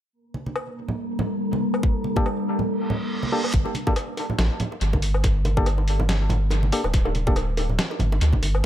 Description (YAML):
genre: deep dubstep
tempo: 141 BPM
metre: 4/4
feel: swing 56% on 16ths, half-time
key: G minor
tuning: A4 = 445 Hz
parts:
  - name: deep dark ambient pad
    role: sustained chords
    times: 1.0-3.5 s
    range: G3 to A4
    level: -29 LUFS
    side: equal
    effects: chorus, built-in reverb
  - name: wind-like tuned noise texture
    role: texture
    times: 0.5-3.5 s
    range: Bb3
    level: -30 LUFS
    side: left 1 dB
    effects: built-in reverb
  - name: congas and bongos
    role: percussion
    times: 0.3-8.5 s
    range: none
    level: -30 LUFS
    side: right 2 dB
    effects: dub echo
  - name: trip hop sampler-style drum kit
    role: drums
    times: 0.6-8.6 s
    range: hi-hat, snare drum, woodblock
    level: -29 LUFS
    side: left 1 dB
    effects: overdrive, dub echo
  - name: electronic kick drum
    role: drums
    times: 1.8-8.4 s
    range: none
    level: -22 LUFS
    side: equal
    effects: none
  - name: percussive organ stab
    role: stabs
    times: 2.2-7.3 s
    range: Bb3 to A4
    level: -30 LUFS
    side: left 1 dB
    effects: chorus, cassette tape, dub echo
  - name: reverse cymbal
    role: sound effects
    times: 2.8-3.5 s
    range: none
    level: -32 LUFS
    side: right 1 dB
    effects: none
  - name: saturated sub bass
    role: bass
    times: 3.5-8.6 s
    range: D1 to D2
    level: -22 LUFS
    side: equal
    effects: none
room: digital ambience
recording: echo-heavy mix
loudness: -21 LUFS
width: side -12 dB against mid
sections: 0.1-3.5 A section; 3.5-8.7 B section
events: reverse cymbal 2.8-3.5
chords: 0.1 Gmadd9